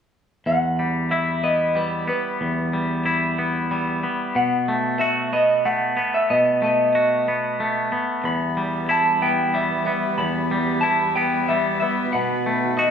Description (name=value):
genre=post-rock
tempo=92 BPM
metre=3/4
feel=straight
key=E harmonic minor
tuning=A4 = 440 Hz
part: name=electric guitar through a small old amp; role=melody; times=0.5-12.9 s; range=B4 to B5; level=-22 LUFS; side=equal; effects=phaser
part: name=twangy electric guitar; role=arpeggios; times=0.5-12.9 s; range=E2 to F#4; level=-22 LUFS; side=left 1 dB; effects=spring reverb
part: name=dark chamber string section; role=sustained chords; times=8.2-12.9 s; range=D#3 to B4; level=-29 LUFS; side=right 3 dB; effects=none
room=moderate large studio reverb, RT60 1.1 s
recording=band playing live in one room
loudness=-19 LUFS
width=side -7 dB against mid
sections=0.5-12.9 A section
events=none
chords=0.5 Em; 4.4 B7; 8.3 Em; 12.1 B7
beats=| 0.46 1.11 1.76 | 2.41 3.06 3.71 | 4.36 5.00 5.65 | 6.30 6.95 7.60 | 8.25 8.90 9.55 | 10.20 10.85 11.49 | 12.14 12.79